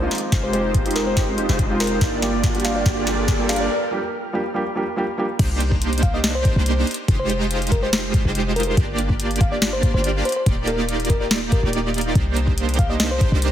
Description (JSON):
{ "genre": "future bass", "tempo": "142 BPM", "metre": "4/4", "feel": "half-time", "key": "unclear", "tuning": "A4 = 441 Hz", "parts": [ { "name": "felt-muted upright piano", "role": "accompaniment", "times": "0.0-5.2 s", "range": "F3 to G4", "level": "-26 LUFS", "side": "right 1 dB", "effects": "sidechain pumping, digital delay" }, { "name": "ethereal airy pad", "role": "sustained chords", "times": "0.0-3.7 s", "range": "Ab3 to F6", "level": "-36 LUFS", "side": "equal", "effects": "none" }, { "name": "big bright polysynth", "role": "riff", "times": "0.0-13.5 s", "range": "Ab3 to D5", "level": "-24 LUFS", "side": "right 2 dB", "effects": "chorus, sidechain pumping, digital delay" }, { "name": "warm 808-style bass", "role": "bass", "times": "0.0-13.5 s", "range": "Eb1 to C2", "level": "-24 LUFS", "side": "equal", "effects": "sidechain pumping" }, { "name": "riser", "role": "sound effects", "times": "0.3-3.7 s", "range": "none", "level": "-31 LUFS", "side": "right 1 dB", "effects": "none" }, { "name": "trap drum kit", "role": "drums", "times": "0.1-13.5 s", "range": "crash cymbal, hi-hat, snare drum", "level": "-25 LUFS", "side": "left 1 dB", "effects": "high-pass filter on hats, high-pass filter on snare, high-pass filter on cymbals, high-pass filter on room" }, { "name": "electronic kick drum", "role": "drums", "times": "0.3-13.3 s", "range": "none", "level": "-20 LUFS", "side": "equal", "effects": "none" }, { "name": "bell-like FM electric piano", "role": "melody", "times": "0.4-13.5 s", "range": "Bb4 to F5", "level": "-27 LUFS", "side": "left 1 dB", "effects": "chorus, sidechain pumping, digital delay" } ], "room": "moderate digital room reverb, RT60 1.1 s, digital ambience", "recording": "heavily compressed radio sound, multiband compression", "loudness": "-18 LUFS", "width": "side -11 dB against mid", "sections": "0.0-5.4 A section; 5.4-13.5 B section", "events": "build-up 0.0-5.4; drum fill 0.0-3.7; riser 0.3-3.7; break 3.7-5.4; drop 5.4-13.5", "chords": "0.1 Fm9; 2.0 Gm7; 5.4 Cm9; 6.9 Fm9; 8.8 Gm7; 10.3 Ebmaj9; 12.2 Cm9", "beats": "| 0.32 0.74 1.17 1.59 | 2.01 2.44 2.86 3.28 | 3.70 4.13 4.55 4.97 | 5.39 5.82 6.24 6.66 | 7.08 7.51 7.93 8.35 | 8.77 9.20 9.62 10.04 | 10.46 10.89 11.31 11.73 | 12.15 12.58 13.00 13.42" }